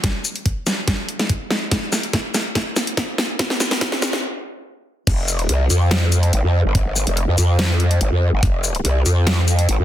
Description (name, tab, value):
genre	heavy wobble dubstep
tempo	143 BPM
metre	4/4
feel	half-time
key	F minor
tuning	A4 = 441 Hz
part	dubstep drum kit	drums	0.0-9.8 s	crash cymbal, hi-hat, shaker, snare drum	-21 LUFS	equal	small room reverb
part	electronic kick drum	drums	0.0-8.5 s	none	-20 LUFS	equal	small room reverb
part	growl bass	bass	5.1-9.8 s	F1 to F2	-16 LUFS	equal	chorus, overdrive
room	light reverb, digital ambience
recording	dense, heavily limited modern master, high-pass filter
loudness	-17 LUFS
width	side -12 dB against mid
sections	0.0-5.1 A section; 5.1-9.8 B section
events	build-up 0.0-5.1; drum fill 0.0-4.2; stop 4.2-5.1; drop 5.1-9.8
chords	none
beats	| 0.04 0.46 0.88 1.29 | 1.72 2.13 2.55 2.97 | 3.39 3.81 4.23 4.65 | 5.07 5.49 5.91 6.33 | 6.75 7.17 7.59 8.01 | 8.43 8.85 9.27 9.69